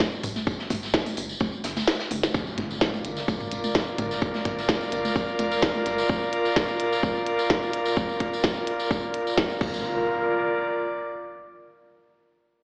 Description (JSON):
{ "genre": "minimal techno", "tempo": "128 BPM", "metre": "4/4", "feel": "swing 53% on 16ths", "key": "G minor", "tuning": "A4 = 440 Hz", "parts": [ { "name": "electronic kick drum", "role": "drums", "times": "0.0-9.7 s", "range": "none", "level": "-29 LUFS", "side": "equal", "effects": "small room reverb" }, { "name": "minimal click drum kit", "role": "drums", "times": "0.0-9.7 s", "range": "crash cymbal, hi-hat, snare drum", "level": "-27 LUFS", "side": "equal", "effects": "small room reverb" }, { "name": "tambourine and snare drum", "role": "drums", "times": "0.0-6.1 s", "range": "none", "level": "-36 LUFS", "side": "equal", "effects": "high-pass filter on snare, small room reverb, sidechain pumping on perc, high-pass filter on perc, high-pass filter on room" }, { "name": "electronic toms", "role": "percussion", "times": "0.0-5.8 s", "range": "none", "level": "-34 LUFS", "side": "equal", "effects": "small room reverb, tape echo" }, { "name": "tambourine", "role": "percussion", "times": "0.0-9.8 s", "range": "none", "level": "-36 LUFS", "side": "equal", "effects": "none" }, { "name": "rubbery square bass", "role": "bass", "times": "0.2-6.0, 9.6-9.8 s", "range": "F1 to G1", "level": "-35 LUFS", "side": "equal", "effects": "tube saturation, sidechain pumping" }, { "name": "impact", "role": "sound effects", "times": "2.3-4.2, 9.6-11.5 s", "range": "none", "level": "-38 LUFS", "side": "equal", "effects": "none" }, { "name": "airy breathy pad", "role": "texture", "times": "2.3-11.7 s", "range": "F4 to D5", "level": "-26 LUFS", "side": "equal", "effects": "chorus, sidechain pumping" } ], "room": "moderate plate reverb, RT60 2.1 s", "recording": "played on a big sound system in a bare room, large studio reverb, AM radio sound", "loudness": "-23 LUFS", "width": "side -38 dB against mid", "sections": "0.0-2.3 A section; 2.3-9.8 B section; 9.8-11.7 C section", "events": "drop 0.0-2.3; kick drops out 1.9-2.3; impact 2.3-4.2", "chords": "0.0 N.C.; 2.3 Gm; 9.8 Bb/F" }